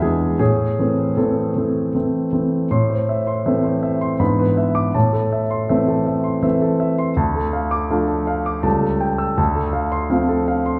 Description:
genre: classical-period piano sonatina.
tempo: 81 BPM.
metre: 3/4.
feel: straight.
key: A minor.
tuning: A4 = 440 Hz.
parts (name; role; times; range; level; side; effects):
warm concert grand piano; solo; 0.0-10.8 s; C#2 to E6; -19 LUFS; equal; none.
room: wet recital hall reverb, RT60 1.4 s.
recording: heard from further back in the room.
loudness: -19 LUFS.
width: mono.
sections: 0.0-2.7 A section; 2.7-10.8 B section.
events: none.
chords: 0.4 Am; 4.2 E7/G#; 5.0 Am; 7.2 Dm; 8.7 A7/C#; 9.4 Dm7.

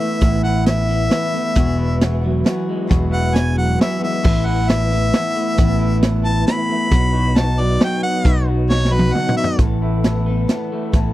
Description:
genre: folk rock and heartland rock.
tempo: 134 BPM.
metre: 3/4.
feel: straight.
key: unclear.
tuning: A4 = 440 Hz.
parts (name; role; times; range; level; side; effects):
clear harmonica; melody; 0.0-9.6 s; B4 to B5; -22 LUFS; equal; none.
picked steel-string acoustic guitar; accompaniment; 0.0-11.1 s; E2 to A4; -26 LUFS; left 7 dB; none.
mellow tonewheel organ; sustained chords; 0.0-11.1 s; F#3 to B5; -31 LUFS; right 1 dB; none.
electric guitar through a small old amp; riff; 0.0-11.1 s; E2 to F#4; -23 LUFS; right 1 dB; none.
fingered electric bass; bass; 0.2-11.1 s; E1 to B1; -18 LUFS; equal; none.
vintage drum kit; drums; 0.2-11.0 s; crash cymbal, hi-hat, kick drum, snare drum, toms; -17 LUFS; equal; none.
room: little or no reverb.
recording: dry, close 1970s-style studio recording.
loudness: -15 LUFS.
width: side -15 dB against mid.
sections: 0.0-9.6 A section; 9.6-11.1 B section.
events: harmonica solo 0.0-9.6; drum fill 8.7-9.6.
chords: 0.0 Asus2; 1.6 Eadd9; 4.2 Asus2; 6.9 B; 9.6 Asus2.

